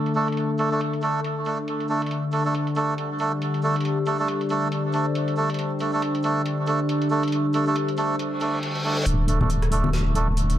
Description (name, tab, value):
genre	deep dubstep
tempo	138 BPM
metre	4/4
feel	swing 58% on 16ths, half-time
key	unclear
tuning	A4 = 441 Hz
part	overtone-sweeping drone	sustained chords	0.0-10.6 s	D3 to C5	-25 LUFS	left 2 dB	chorus, built-in reverb
part	garage drum kit	drums	0.1-10.6 s	hi-hat, rim click, snare drum	-37 LUFS	equal	high-pass filter on hats, low-pass filter on hats, high-pass filter on snare, low-pass filter on snare, high-pass filter on room, low-pass filter on room
part	melodica	stabs	0.2-10.3 s	A3 to A4	-26 LUFS	right 3 dB	vintage 12-bit sampler grit, low-pass filter, dub echo
part	reverse cymbal and riser	sound effects	8.4-10.6 s	none	-32 LUFS	left 1 dB	none
part	deep soft wobble bass	bass	9.1-10.6 s	D1	-22 LUFS	equal	chorus
part	congas	percussion	9.4-9.9 s	none	-27 LUFS	left 2 dB	none
room	light reverb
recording	dark, warm production, vinyl crackle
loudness	-21 LUFS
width	side -12 dB against mid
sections	0.0-9.1 A section; 9.1-10.6 B section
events	reverse cymbal 8.4-9.1; build-up 9.1-10.6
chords	0.0 D5